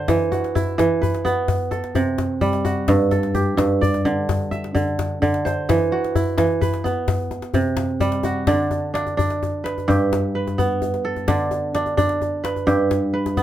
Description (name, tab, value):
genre	west african traditional, West African string and xylophone music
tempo	86 BPM (dotted quarters)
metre	12/8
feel	straight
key	G major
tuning	A4 = 442 Hz
part	kora	arpeggios	0.0-13.4 s	G2 to E5	-20 LUFS	right 2 dB	none
part	djembe	percussion	0.1-13.4 s	none	-24 LUFS	left 4 dB	none
room	moderate small room reverb, RT60 0.5 s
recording	none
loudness	-18 LUFS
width	side -12 dB against mid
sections	0.0-8.5 A section; 8.5-13.4 B section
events	none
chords	0.1 E5; 1.5 C5; 2.9 G5; 5.7 E5; 7.1 C5; 8.5 D; 9.9 G; 11.3 D5; 12.7 G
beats	| 0.09 0.79 1.49 2.19 | 2.89 3.59 4.29 4.99 | 5.69 6.39 7.09 7.79 | 8.48 9.18 9.88 10.58 | 11.28 11.98 12.68 13.38